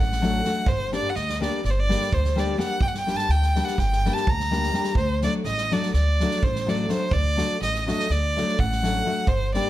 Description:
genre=balkan folk, Balkan wedding band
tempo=251 BPM (eighths)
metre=9/8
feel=straight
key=D phrygian dominant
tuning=A4 = 440 Hz
part: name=clear violin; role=melody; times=0.0-9.7 s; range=C5 to Bb5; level=-26 LUFS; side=right 1 dB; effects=none
part: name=upright bass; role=bass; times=0.0-9.6 s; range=G1 to D2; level=-25 LUFS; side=equal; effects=none
part: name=unplugged drum kit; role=percussion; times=0.1-9.6 s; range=kick drum, snare drum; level=-28 LUFS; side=right 1 dB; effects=none
part: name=nylon-string guitar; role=accompaniment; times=0.2-9.7 s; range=F#3 to G4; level=-27 LUFS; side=left 3 dB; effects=none
room=light reverb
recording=none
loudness=-21 LUFS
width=side -14 dB against mid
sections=0.0-9.7 A section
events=none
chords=0.0 D; 0.7 Gm; 5.0 D

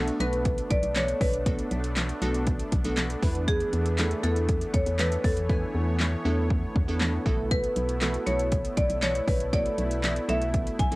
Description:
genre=dance-pop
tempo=119 BPM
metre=4/4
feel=straight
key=unclear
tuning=A4 = 440 Hz
part: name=glassy wavetable pluck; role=accompaniment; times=0.0-11.0 s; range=A3 to G#5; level=-32 LUFS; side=right 1 dB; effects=chorus, sidechain pumping
part: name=supersaw pad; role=sustained chords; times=0.0-11.0 s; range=E3 to C#5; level=-36 LUFS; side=equal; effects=sidechain pumping
part: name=organ-like FM bass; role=bass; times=0.0-11.0 s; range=B1 to E2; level=-29 LUFS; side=equal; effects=sidechain pumping
part: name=pop drum kit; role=drums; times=0.1-11.0 s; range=handclaps, hi-hat, kick drum, snare drum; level=-27 LUFS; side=equal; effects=overdrive, cassette tape
part: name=marimba with hard mallets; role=melody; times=0.2-11.0 s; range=G#4 to G#5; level=-29 LUFS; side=equal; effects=cassette tape, tape echo
room=little or no reverb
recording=home recording on cassette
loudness=-24 LUFS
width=side -21 dB against mid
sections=0.0-11.0 A section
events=hi-hats muted 5.5-7.5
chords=0.0 Bm7; 3.2 E7sus4; 7.3 B7sus4

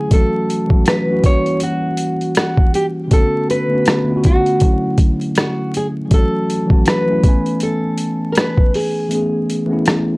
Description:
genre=lo-fi hip hop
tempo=80 BPM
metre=4/4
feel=swing 57% on 16ths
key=A major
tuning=A4 = 440 Hz
part: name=nylon-string guitar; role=melody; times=0.0-10.2 s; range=F#4 to C#5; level=-20 LUFS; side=equal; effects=low-pass filter
part: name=mellow tine electric piano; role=accompaniment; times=0.0-10.2 s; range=D3 to G#5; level=-18 LUFS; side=equal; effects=cassette tape, low-pass filter
part: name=boom bap sampler-style drum kit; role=drums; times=0.1-10.1 s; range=hi-hat, kick drum, rim click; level=-14 LUFS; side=equal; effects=overdrive
room=moderate small room reverb, RT60 0.6 s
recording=dry, gritty hardware recording, vinyl crackle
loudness=-13 LUFS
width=side -24 dB against mid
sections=0.0-9.1 A section; 9.1-10.2 B section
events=kick muted 9.1-10.2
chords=0.1 A6; 1.2 F#7b9; 3.1 Bm9; 4.6 E13sus4; 6.1 A6; 7.2 Amaj9

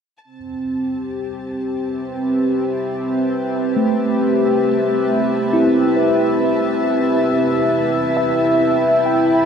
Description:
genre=ambient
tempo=68 BPM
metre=4/4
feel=straight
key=C major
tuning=A4 = 439 Hz
part: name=warm analog pad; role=sustained chords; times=0.2-9.5 s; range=C4 to B5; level=-17 LUFS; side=equal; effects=chorus
part: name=bowed-like drone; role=drone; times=2.1-9.5 s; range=C3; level=-33 LUFS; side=right 2 dB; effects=built-in reverb
part: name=rich symphonic violin section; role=texture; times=0.2-9.5 s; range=A5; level=-35 LUFS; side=left 1 dB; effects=none
part: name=mellow tine electric piano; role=arpeggios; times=3.8-9.5 s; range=A3 to G5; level=-20 LUFS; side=right 1 dB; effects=medium stereo tremolo, diffuse ambient delay
room=wet huge ambient reverb, RT60 8.2 s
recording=none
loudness=-16 LUFS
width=side -7 dB against mid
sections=0.2-9.5 A section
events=fade-in on synth drone 0.2-9.5; fade-in on violin section 0.2-9.5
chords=0.2 Cmaj7

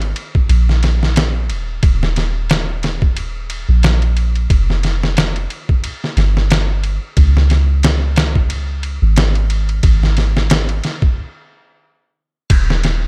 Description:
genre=trip hop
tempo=90 BPM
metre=4/4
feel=swing 56% on 16ths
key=unclear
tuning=A4 = 439 Hz
part: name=soft 808-style bass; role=bass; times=0.0-13.1 s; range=Eb1 to Db2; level=-17 LUFS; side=equal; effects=none
part: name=trip hop sampler-style drum kit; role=drums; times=0.0-13.0 s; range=crash cymbal, kick drum, ride cymbal, snare drum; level=-19 LUFS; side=equal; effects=none
room=little or no reverb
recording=none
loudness=-15 LUFS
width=mono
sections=0.0-12.5 A section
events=stop 11.2-12.5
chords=none

